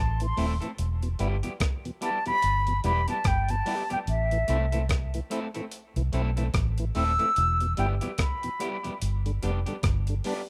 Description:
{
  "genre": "roots reggae",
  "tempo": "73 BPM",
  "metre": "4/4",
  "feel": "swing 58% on 16ths",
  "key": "A minor",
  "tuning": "A4 = 440 Hz",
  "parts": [
    { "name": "concert flute", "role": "melody", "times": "0.0-9.0 s", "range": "E5 to E6", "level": "-30 LUFS", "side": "equal", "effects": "dub echo, plate reverb" },
    { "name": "vintage muted fingered electric bass", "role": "bass", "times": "0.0-10.2 s", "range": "D#1 to C2", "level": "-29 LUFS", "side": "equal", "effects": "none" },
    { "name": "tonewheel organ", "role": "accompaniment", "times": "0.2-10.3 s", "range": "E2 to E4", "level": "-38 LUFS", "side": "equal", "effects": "overdrive, stopped rotary speaker" },
    { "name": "breakbeat sampler-style drum kit", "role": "drums", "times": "0.2-10.5 s", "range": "hi-hat, kick drum, rim click", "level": "-33 LUFS", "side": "equal", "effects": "none" },
    { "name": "electric guitar at the edge of break-up", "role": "accompaniment", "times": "0.4-10.4 s", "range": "G3 to A4", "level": "-39 LUFS", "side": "equal", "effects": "warbly pitch drift, dub echo" }
  ],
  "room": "little or no reverb",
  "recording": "rough home demo mix, faint mains hum",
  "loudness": "-27 LUFS",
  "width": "mono",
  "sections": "0.0-10.5 A section",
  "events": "flute solo 0.0-10.5",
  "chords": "0.0 Am; 0.8 Em; 4.1 Am; 7.4 Em; 9.0 G"
}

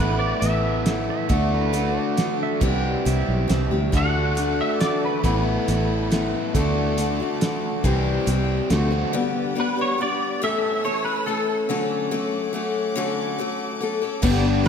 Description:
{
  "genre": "folk rock and heartland rock",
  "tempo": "139 BPM",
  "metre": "3/4",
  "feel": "straight",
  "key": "D mixolydian, D major from 9.1 s",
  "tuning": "A4 = 436 Hz",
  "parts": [
    { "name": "twangy electric guitar", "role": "melody", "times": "0.0-1.0, 4.0-6.3, 9.6-11.6, 14.7 s", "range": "A4 to F#5", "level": "-27 LUFS", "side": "right 1 dB", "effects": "ensemble chorus, slapback echo" },
    { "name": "picked steel-string acoustic guitar", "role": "accompaniment", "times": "0.0-14.7 s", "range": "G2 to A4", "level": "-24 LUFS", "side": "left 4 dB", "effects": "none" },
    { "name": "overdriven electric guitar", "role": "riff", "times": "0.0-9.1, 14.2-14.7 s", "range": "G2 to G4", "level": "-27 LUFS", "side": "right 2 dB", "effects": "none" },
    { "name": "fingered electric bass", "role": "bass", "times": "0.0-9.0, 14.2-14.7 s", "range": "G1 to D2", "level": "-24 LUFS", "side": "right 1 dB", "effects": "none" },
    { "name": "cloth-damped thuddy drum kit", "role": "drums", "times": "0.4-8.8, 14.2-14.7 s", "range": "crash cymbal, hi-hat, kick drum, ride cymbal, snare drum", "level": "-26 LUFS", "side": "right 1 dB", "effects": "none" },
    { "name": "pedal steel guitar", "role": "second line", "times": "1.1-3.8 s", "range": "B4 to F#5", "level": "-32 LUFS", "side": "right 9 dB", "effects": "none" },
    { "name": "clear studio string section", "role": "sustained chords", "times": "3.9-14.7 s", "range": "C#4 to E6", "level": "-34 LUFS", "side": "left 3 dB", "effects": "none" },
    { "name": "tambourine", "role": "percussion", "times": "14.2-14.5 s", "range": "none", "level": "-39 LUFS", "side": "right 11 dB", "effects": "none" }
  ],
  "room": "wet concert hall reverb, RT60 2.6 s",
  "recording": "none",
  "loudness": "-20 LUFS",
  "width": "side -7 dB against mid",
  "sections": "0.0-9.1 A section; 9.1-14.7 B section",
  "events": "none",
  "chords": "0.0 Asus2; 1.3 D; 2.6 C; 3.9 D; 5.2 Asus2; 6.5 D; 7.8 C; 8.7 D7; 9.1 G; 10.4 A; 11.7 Dmaj7"
}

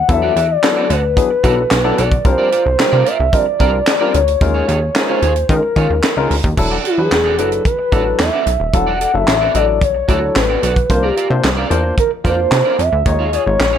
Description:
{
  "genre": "early-eighties boogie funk",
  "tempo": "111 BPM",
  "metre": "4/4",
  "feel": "straight",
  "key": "unclear",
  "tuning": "A4 = 440 Hz",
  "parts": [
    { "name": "gliding portamento lead", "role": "melody", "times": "0.0-13.8 s", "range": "E4 to F#5", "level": "-16 LUFS", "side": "left 1 dB", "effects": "chorus, phaser" },
    { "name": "plucky analog bass", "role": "bass", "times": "0.0-13.8 s", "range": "D#1 to D#3", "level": "-18 LUFS", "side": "equal", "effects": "none" },
    { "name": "barky tine electric piano", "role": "accompaniment", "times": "0.1-13.6 s", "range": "F#3 to C#5", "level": "-21 LUFS", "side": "left 4 dB", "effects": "medium stereo tremolo" },
    { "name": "electric guitar at the edge of break-up", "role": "riff", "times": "0.1-13.8 s", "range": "F4 to D5", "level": "-24 LUFS", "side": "right 6 dB", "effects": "analog chorus" },
    { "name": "tight funk drum kit", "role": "drums", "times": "0.1-13.7 s", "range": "crash cymbal, handclaps, hi-hat, kick drum, snare drum", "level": "-17 LUFS", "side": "equal", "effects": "gated reverb" }
  ],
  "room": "light reverb, small room ambience",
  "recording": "none",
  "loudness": "-12 LUFS",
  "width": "side -9 dB against mid",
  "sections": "0.0-6.6 A section; 6.6-13.8 B section",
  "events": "soft synth lead solo 6.6-13.8",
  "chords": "0.0 E9sus4; 2.2 C9sus4; 4.4 D#9sus4; 6.6 E9sus4; 10.9 C9sus4; 13.1 D#9sus4"
}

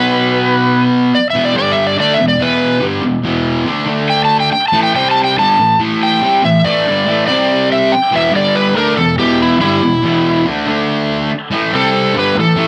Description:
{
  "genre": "rock",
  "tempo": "142 BPM",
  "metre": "4/4",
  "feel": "straight",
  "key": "E minor",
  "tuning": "A4 = 442 Hz",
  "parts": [
    { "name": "overdriven slide guitar", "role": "melody", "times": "0.0-12.7 s", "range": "E4 to A5", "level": "-16 LUFS", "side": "equal", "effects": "none" },
    { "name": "fuzz guitar", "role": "riff", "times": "0.0-12.7 s", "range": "E2 to D4", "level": "-16 LUFS", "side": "equal", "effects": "distortion" }
  ],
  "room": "moderate echo chamber reverb, RT60 1.3 s",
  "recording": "none",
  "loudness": "-13 LUFS",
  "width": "mono",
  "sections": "0.0-1.1 A section; 1.1-7.9 B section; 7.9-12.7 C section",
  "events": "electric slide guitar solo 1.1-7.9",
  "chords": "0.0 B5; 1.1 E5; 1.6 G5; 2.0 Em; 3.9 D5; 4.7 A5; 4.9 C5; 5.4 A5; 7.3 C5; 7.9 Em; 8.3 G5; 8.8 Em; 10.7 D5; 11.5 A5; 11.7 C5; 12.2 A5"
}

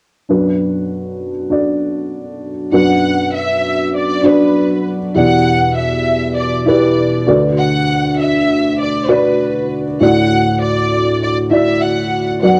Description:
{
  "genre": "pop",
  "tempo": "99 BPM",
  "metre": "4/4",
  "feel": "straight",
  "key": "B minor",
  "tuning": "A4 = 441 Hz",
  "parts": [
    { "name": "dark upright piano", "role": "accompaniment", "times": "0.3-12.6 s", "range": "B1 to D5", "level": "-16 LUFS", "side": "equal", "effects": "cassette tape" },
    { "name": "warm studio violin section", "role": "melody", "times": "2.7-12.6 s", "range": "B4 to F#5", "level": "-20 LUFS", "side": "equal", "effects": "cassette tape, plate reverb" }
  ],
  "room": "moderate small room reverb, RT60 0.5 s",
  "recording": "home recording on cassette",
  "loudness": "-15 LUFS",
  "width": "mono",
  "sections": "0.3-2.7 A section; 2.7-12.6 B section",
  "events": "none",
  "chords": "0.3 Bm; 5.2 Em7; 7.3 Bm/D; 10.0 Dadd9"
}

